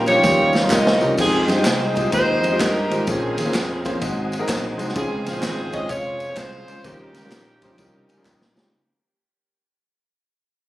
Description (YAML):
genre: uptempo gospel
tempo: 127 BPM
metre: 4/4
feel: swing 65% on 8ths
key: unclear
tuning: A4 = 442 Hz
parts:
  - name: mellow saxophone section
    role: melody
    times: 0.0-8.3 s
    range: Bb3 to Eb5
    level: -21 LUFS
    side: equal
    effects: tape echo
  - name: warm baby grand piano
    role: accompaniment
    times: 0.0-8.7 s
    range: Ab2 to Ab5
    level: -26 LUFS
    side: left 1 dB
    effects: none
  - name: bright tonewheel organ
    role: sustained chords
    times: 0.0-8.7 s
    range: Db3 to G5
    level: -31 LUFS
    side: right 1 dB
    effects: none
  - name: fingered electric bass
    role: bass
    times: 0.0-8.7 s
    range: F1 to G2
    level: -26 LUFS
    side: equal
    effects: none
  - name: swinging big-band drum kit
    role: drums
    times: 0.1-8.7 s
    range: crash cymbal, kick drum, ride cymbal, snare drum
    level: -25 LUFS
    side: equal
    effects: none
  - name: tambourine and handclaps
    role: percussion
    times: 0.1-8.6 s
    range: none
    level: -32 LUFS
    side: equal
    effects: none
room: small room ambience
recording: recorded on a phone in the room, studio reverb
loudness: -18 LUFS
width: side -16 dB against mid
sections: 0.0-1.2 A section; 1.2-8.7 B section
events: drum fill 0.2-1.2, 8.3-8.7; fade-out 1.2-8.7; grand piano fill 7.8-8.7; tonewheel organ fill 7.8-8.7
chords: 0.0 Eb9; 1.2 Fm9; 3.1 Bbm9; 4.0 Ab7; 5.0 Dbmaj7; 6.8 Eb9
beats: 0.24 0.71 | 1.19 1.66 2.13 2.60 | 3.08 3.55 4.02 4.49 | 4.96 5.43 5.91 6.38 | 6.85 7.32 7.79 8.26